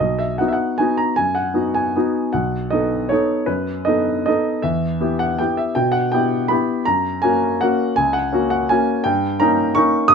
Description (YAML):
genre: classical, piano waltz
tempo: 147-179 BPM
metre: 3/4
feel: rubato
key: B major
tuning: A4 = 440 Hz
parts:
  - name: clear concert grand piano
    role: solo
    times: 0.0-10.1 s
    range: B1 to D#6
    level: -16 LUFS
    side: equal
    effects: none
room: light reverb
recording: none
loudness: -17 LUFS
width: side -6 dB against mid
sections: 0.0-10.1 A section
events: none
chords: 0.0 B; 2.3 B7; 4.6 Em; 6.9 F#; 9.0 D#7/G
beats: 0.39 0.79 | 1.17 1.55 1.95 | 2.34 2.72 3.11 | 3.50 3.88 4.27 | 4.63 5.00 5.38 | 5.76 6.14 6.51 | 6.87 7.23 7.60 | 7.95 8.31 8.69 | 9.05 9.40 9.76 | 10.11